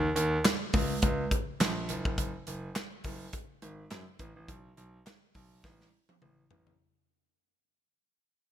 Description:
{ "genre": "early-eighties boogie funk", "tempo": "104 BPM", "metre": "4/4", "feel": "swing 56% on 16ths", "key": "unclear", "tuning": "A4 = 440 Hz", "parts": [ { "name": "clear concert grand piano", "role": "bass", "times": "0.0-6.7 s", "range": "Gb1 to Gb2", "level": "-32 LUFS", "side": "equal", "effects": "none" }, { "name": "modern studio drum kit", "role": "drums", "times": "0.2-6.8 s", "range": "handclaps, hi-hat, kick drum, snare drum, toms", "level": "-30 LUFS", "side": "equal", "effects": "none" } ], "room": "little or no reverb", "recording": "bright 1980s-style digital production", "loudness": "-28 LUFS", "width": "side -11 dB against mid", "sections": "0.0-6.8 A section", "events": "fade-out 0.0-6.8; drum fill 5.6-6.8", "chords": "none" }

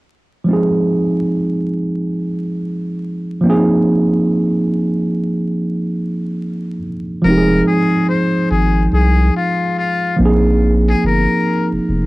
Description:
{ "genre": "hip hop", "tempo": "71 BPM", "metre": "4/4", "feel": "swing 61% on 16ths", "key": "F minor", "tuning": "A4 = 440 Hz", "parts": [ { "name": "mellow tine electric piano", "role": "accompaniment", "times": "0.4-12.1 s", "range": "F3 to Ab4", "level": "-15 LUFS", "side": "right 1 dB", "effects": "cassette tape, low-pass filter" }, { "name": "trumpet with metal mute", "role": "melody", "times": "7.2-11.7 s", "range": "F4 to C5", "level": "-20 LUFS", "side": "left 4 dB", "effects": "low-pass filter, cassette tape" }, { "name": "saturated sub bass", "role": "bass", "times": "7.2-12.1 s", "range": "F1 to C2", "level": "-15 LUFS", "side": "equal", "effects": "transformer saturation" } ], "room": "wet booth ambience, RT60 0.2 s", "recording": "home recording on cassette, vinyl crackle", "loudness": "-14 LUFS", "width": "side -20 dB against mid", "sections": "0.5-7.2 A section; 7.2-12.1 B section", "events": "none", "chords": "0.5 Fm7; 3.4 Bb9sus4; 7.2 Fm7; 10.2 Bb9sus4" }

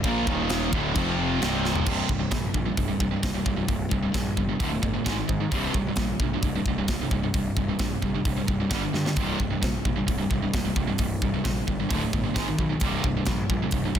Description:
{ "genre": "heavy metal", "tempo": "131 BPM", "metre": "4/4", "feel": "straight", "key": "C minor", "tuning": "A4 = 439 Hz", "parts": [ { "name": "sludgy distorted guitar", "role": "riff", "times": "0.0-14.0 s", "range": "C2 to Bb3", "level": "-30 LUFS", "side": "left 8 dB", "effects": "overdrive" }, { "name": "tight distorted guitar", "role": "riff", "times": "0.0-14.0 s", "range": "C2 to Bb3", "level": "-29 LUFS", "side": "right 9 dB", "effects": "distortion" }, { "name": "fuzz picked electric bass", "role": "bass", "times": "0.0-14.0 s", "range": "C1 to Ab2", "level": "-31 LUFS", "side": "equal", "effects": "overdrive" }, { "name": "tight metal drum kit", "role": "drums", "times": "0.0-14.0 s", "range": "china cymbal, crash cymbal, hi-hat, kick drum, snare drum, toms", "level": "-28 LUFS", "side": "equal", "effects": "none" }, { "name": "sludgy distorted guitar", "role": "riff", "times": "0.1-1.9 s", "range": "C2 to Bb3", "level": "-31 LUFS", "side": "left 2 dB", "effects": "overdrive" } ], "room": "light reverb", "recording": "dense, heavily limited modern master", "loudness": "-23 LUFS", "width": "side -9 dB against mid", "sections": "0.0-1.9 A section; 1.9-14.0 B section", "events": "drum fill 1.6, 8.9", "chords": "0.3 Eb5; 0.7 D5; 1.0 F5; 1.4 C5; 4.6 D5; 5.1 Ab5; 5.5 C5; 8.7 G5; 9.2 C5; 11.9 D5; 12.4 Ab5; 12.8 C5" }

